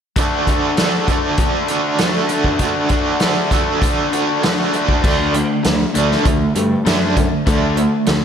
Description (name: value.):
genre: classic rock.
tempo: 98 BPM.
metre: 4/4.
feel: straight.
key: unclear.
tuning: A4 = 440 Hz.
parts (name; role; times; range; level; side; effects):
overdriven electric guitar; riff; 0.2-8.2 s; D3 to A4; -19 LUFS; right 7 dB; tremolo, slapback echo.
raw garage guitar; riff; 0.2-8.2 s; D3 to F#4; -20 LUFS; left 8 dB; overdrive, slapback echo.
vintage drum kit; drums; 0.2-8.2 s; crash cymbal, hi-hat, kick drum, snare drum; -18 LUFS; equal; none.
fuzz fingered electric bass; bass; 5.0-8.2 s; D2 to G2; -21 LUFS; equal; overdrive.
room: moderate lush hall reverb, RT60 1.7 s.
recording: big arena sound.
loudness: -14 LUFS.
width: side -8 dB against mid.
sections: 0.2-5.0 A section; 5.0-8.2 B section.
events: none.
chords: 0.2 D; 5.0 D5.